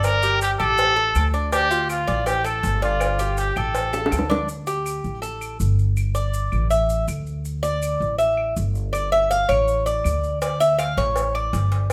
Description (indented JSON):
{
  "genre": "latin, Cuban son and guajira",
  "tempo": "162 BPM",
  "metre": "4/4",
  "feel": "straight",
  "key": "D harmonic minor",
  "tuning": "A4 = 439 Hz",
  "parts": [
    { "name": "clear trumpet", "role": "melody", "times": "0.0-4.3 s", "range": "F4 to Bb4", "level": "-24 LUFS", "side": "equal", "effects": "none" },
    { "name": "Cuban tres", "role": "arpeggios", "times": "0.0-11.9 s", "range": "D4 to F5", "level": "-25 LUFS", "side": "equal", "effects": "none" },
    { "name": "upright bass", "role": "bass", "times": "0.0-11.9 s", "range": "G1 to D2", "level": "-26 LUFS", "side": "equal", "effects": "none" },
    { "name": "cowbell and bongos", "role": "percussion", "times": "0.0-4.4, 10.4-11.9 s", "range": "none", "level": "-30 LUFS", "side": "equal", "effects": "none" },
    { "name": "maracas", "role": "percussion", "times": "0.0-11.9 s", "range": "none", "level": "-41 LUFS", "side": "equal", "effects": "none" },
    { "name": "claves", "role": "percussion", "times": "0.1-11.9 s", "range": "none", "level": "-40 LUFS", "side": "equal", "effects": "none" }
  ],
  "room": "moderate large studio reverb, RT60 0.9 s",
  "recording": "none",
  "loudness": "-22 LUFS",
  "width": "mono",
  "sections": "0.0-4.5 A section; 4.5-11.9 B section",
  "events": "drum fill 3.9-4.5; Cuban tres solo 4.5-11.9",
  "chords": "0.0 Gm; 0.8 A7sus4; 1.5 Dm; 2.3 G5; 3.7 A7sus4; 5.2 Gsus2; 6.7 D5; 8.2 A7b13/G; 9.7 D5; 11.2 Fadd9 (rootless)",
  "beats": "| 0.05 0.41 0.78 1.15 | 1.52 1.89 2.26 2.63 | 3.00 3.37 3.74 4.11 | 4.48 4.85 5.22 5.60 | 5.97 6.34 6.71 7.08 | 7.45 7.82 8.20 8.57 | 8.94 9.31 9.68 10.05 | 10.42 10.79 11.16 11.54 | 11.91"
}